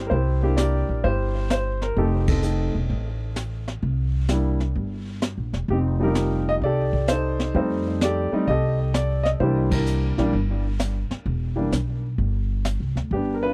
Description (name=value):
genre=jazz piano trio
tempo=129 BPM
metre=4/4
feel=swing 67% on 8ths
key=C mixolydian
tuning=A4 = 439 Hz
part: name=warm upright piano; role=melody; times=0.0-13.5 s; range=E3 to Eb5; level=-27 LUFS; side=equal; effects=tape echo
part: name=upright bass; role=bass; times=0.0-13.5 s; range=E1 to F2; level=-26 LUFS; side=equal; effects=none
part: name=jazz brush drum kit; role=drums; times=0.1-13.5 s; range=brushed snare drum, hi-hat, kick drum, ride cymbal, snare drum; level=-30 LUFS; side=equal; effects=none
room=little or no reverb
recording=dry, close 1970s-style studio recording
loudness=-24 LUFS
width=mono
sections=0.0-13.5 A section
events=band accent 2.2, 9.6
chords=0.0 C9; 2.0 F7; 3.8 C5; 5.7 F9; 9.4 C9